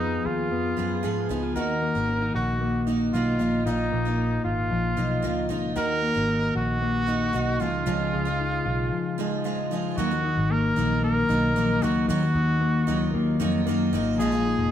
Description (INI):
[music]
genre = indie pop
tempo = 114 BPM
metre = 4/4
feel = straight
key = Eb minor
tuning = A4 = 441 Hz
[part]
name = clear trumpet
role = melody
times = 0.0-14.7 s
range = Eb4 to Bb4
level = -28 LUFS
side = right 1 dB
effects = none
[part]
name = picked twelve-string acoustic guitar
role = accompaniment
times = 0.0-14.7 s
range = Bb2 to Ab4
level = -30 LUFS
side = right 5 dB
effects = none
[part]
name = mellow electric guitar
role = arpeggios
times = 0.0-14.7 s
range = Bb2 to Ab4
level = -26 LUFS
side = left 4 dB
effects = none
[part]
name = vintage muted picked electric bass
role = bass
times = 0.0-14.7 s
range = F1 to Ab2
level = -29 LUFS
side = right 1 dB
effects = none
[sound]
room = wet stone room reverb, RT60 1.1 s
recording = band playing live in one room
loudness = -22 LUFS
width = side -10 dB against mid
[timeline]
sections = 0.0-10.0 A section; 10.0-14.7 B section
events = break 8.9-10.0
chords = 0.0 Fdim; 1.6 Ebm; 3.4 Bbsus4; 5.8 Ebm; 7.6 Dbadd9; 10.0 Ebmadd9; 14.2 Bb7sus4